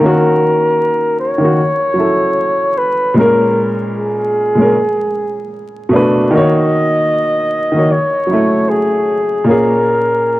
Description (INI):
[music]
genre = hip hop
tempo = 76 BPM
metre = 4/4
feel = swing 58% on 16ths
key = unclear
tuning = A4 = 439 Hz
[part]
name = breathy flugelhorn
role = melody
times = 0.0-10.4 s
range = Ab4 to Eb5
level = -14 LUFS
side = equal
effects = low-pass filter, analog delay
[part]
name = warm upright piano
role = accompaniment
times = 0.0-10.4 s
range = Bb2 to Db5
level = -14 LUFS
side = equal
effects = cassette tape, low-pass filter
[sound]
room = moderate plate reverb, RT60 2.3 s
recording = worn, warbling old tape, cassette tape, vinyl crackle, warbly pitch drift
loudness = -11 LUFS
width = side -17 dB against mid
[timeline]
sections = 0.0-10.4 A section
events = none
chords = 0.0 Ebm7; 1.6 Gbm7; 3.2 Bbm7; 4.7 Bm7; 6.3 Ebm7; 7.9 Gbm7; 9.5 Bbm7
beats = | 0.00 0.79 1.58 2.37 | 3.16 3.95 4.74 5.53 | 6.31 7.10 7.89 8.68 | 9.47 10.26